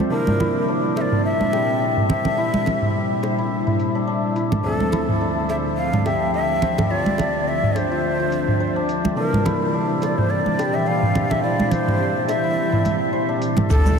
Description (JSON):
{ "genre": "organic downtempo", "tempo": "106 BPM", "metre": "4/4", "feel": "swing 56% on 16ths", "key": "unclear", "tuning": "A4 = 441 Hz", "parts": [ { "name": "overdriven tine electric piano", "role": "accompaniment", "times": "0.0-13.7 s", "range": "D2 to E5", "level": "-28 LUFS", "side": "moving between left 2 dB and right 5 dB", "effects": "auto-pan, sidechain pumping, diffuse ambient delay" }, { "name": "ethereal airy pad", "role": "sustained chords", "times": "0.0-14.0 s", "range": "Bb2 to E5", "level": "-26 LUFS", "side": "equal", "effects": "ensemble chorus, built-in reverb, sidechain pumping" }, { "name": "santur", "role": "arpeggios", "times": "0.0-14.0 s", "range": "D4 to C5", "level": "-25 LUFS", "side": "left 2 dB", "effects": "low-pass filter, diffuse ambient delay" }, { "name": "congas and bongos", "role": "percussion", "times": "0.0-14.0 s", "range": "none", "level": "-27 LUFS", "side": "right 2 dB", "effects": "none" }, { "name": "breathy ney", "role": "melody", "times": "0.1-14.0 s", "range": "A4 to F5", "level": "-24 LUFS", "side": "left 1 dB", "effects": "diffuse ambient delay" }, { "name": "afro-pop drum kit", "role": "drums", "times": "0.3-14.0 s", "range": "hi-hat, shaker, toms", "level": "-26 LUFS", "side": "right 1 dB", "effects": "low-pass filter on perc, studio reverb, low-pass filter on hats, low-pass filter on toms" }, { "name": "warm sub bass", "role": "bass", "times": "13.7-14.0 s", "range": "D2", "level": "-16 LUFS", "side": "equal", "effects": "none" }, { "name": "electronic kick drum", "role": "drums", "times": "13.7-13.8 s", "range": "none", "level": "-24 LUFS", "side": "equal", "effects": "overdrive, studio reverb" }, { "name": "impact", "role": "sound effects", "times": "13.7-14.0 s", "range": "none", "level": "-24 LUFS", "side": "equal", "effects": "none" } ], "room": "wet huge ambient reverb, RT60 8.1 s", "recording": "dreamy mix soaked in reverb", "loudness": "-18 LUFS", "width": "side -6 dB against mid", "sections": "0.0-13.7 A section", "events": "impact 13.7", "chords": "0.1 C7; 4.6 Dm9; 9.2 C7" }